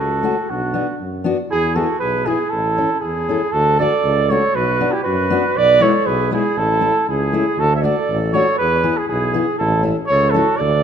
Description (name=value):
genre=alpine folk, alpine dance band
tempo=119 BPM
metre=2/4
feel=straight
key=A major, D major from 3.5 s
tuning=A4 = 440 Hz
part: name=warm flugelhorn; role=melody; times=0.0-10.8 s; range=F#4 to E5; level=-17 LUFS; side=right 2 dB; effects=none
part: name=warm clarinet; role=second line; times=0.0-10.8 s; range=D4 to C#5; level=-25 LUFS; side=right 2 dB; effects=none
part: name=mellow tuba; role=bass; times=0.0-10.8 s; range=A1 to F#2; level=-22 LUFS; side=equal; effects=none
part: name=fingerpicked steel-string acoustic guitar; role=accompaniment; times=0.2-10.5 s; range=G#3 to A4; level=-23 LUFS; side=left 5 dB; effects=none
room=moderate concert hall reverb, RT60 2.4 s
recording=minimal, uncompressed stereo recording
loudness=-15 LUFS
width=side -8 dB against mid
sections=0.0-3.5 A section; 3.5-10.8 B section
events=none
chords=0.5 Bm; 1.5 E; 2.5 A; 3.5 D; 4.5 Bm; 5.6 E/B; 6.6 A; 7.6 D; 8.6 E; 9.6 A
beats=| 0.49 0.99 | 1.50 2.00 | 2.51 3.02 | 3.53 4.04 | 4.55 5.05 | 5.55 6.06 | 6.56 7.07 | 7.57 8.08 | 8.58 9.08 | 9.59 10.09 | 10.59